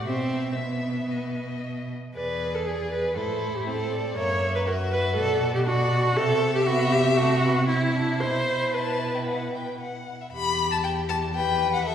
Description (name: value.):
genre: quick classical-period movement for string quartet.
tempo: 118 BPM.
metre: 4/4.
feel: rubato.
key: E minor.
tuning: A4 = 440 Hz.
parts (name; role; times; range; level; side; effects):
warm violin; melody; 0.0-11.9 s; C5 to B5; -30 LUFS; left 5 dB; none.
rich violin; second line; 0.0-11.9 s; A3 to E5; -33 LUFS; left 2 dB; none.
warm cello; bass; 0.0-11.9 s; E2 to C3; -28 LUFS; right 2 dB; none.
rich viola; accompaniment; 0.1-11.9 s; B3 to C#5; -26 LUFS; right 1 dB; none.
room: wet recital hall reverb, RT60 1.7 s.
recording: recorded in a church or concert hall.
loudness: -22 LUFS.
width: side -9 dB against mid.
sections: 0.0-10.3 A section; 10.3-11.9 A section.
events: none.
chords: 0.1 E5/B; 1.1 B; 2.2 E7; 3.2 Am; 4.2 F#7; 5.2 Bm; 6.2 Cmaj7#11; 8.2 E5/B; 9.3 B5; 10.3 Em.